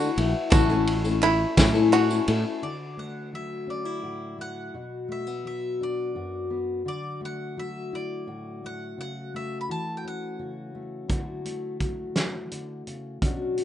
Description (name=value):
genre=indie folk with a building arrangement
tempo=57 BPM (dotted quarters)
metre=6/8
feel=straight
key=D major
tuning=A4 = 440 Hz
part: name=bowl-back mandolin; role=melody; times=0.0-10.8 s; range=D5 to B5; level=-38 LUFS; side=equal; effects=plate reverb
part: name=picked steel-string acoustic guitar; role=accompaniment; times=0.0-2.6 s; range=A2 to A4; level=-24 LUFS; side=left 7 dB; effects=plate reverb
part: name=bluegrass banjo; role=arpeggios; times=0.0-2.6 s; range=E4 to F#4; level=-27 LUFS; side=right 5 dB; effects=plate reverb
part: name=sustaining fretless electric bass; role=bass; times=0.0-2.4 s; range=A1 to A2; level=-25 LUFS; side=right 1 dB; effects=none
part: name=loose indie drum kit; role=drums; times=0.2-2.4, 11.1-13.6 s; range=hi-hat, kick drum, ride cymbal, snare drum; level=-25 LUFS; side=right 1 dB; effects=none
part: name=group handclap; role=percussion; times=0.5-2.1 s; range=none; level=-36 LUFS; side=right 4 dB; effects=none
part: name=tambourine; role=percussion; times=0.5-2.3 s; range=none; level=-40 LUFS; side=right 5 dB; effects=none
part: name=fingerpicked steel-string acoustic guitar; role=accompaniment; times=2.6-13.6 s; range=F#2 to F#4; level=-32 LUFS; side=left 2 dB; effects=none
room=light reverb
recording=rough home demo mix, nothing above 10.5 kHz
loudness=-24 LUFS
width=side -10 dB against mid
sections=0.0-2.6 A section; 2.6-13.6 B section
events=none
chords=0.0 Dadd9; 0.5 A; 2.6 Dadd9; 4.7 Bm; 6.9 Dadd9; 9.0 A6/C#; 11.1 Dadd9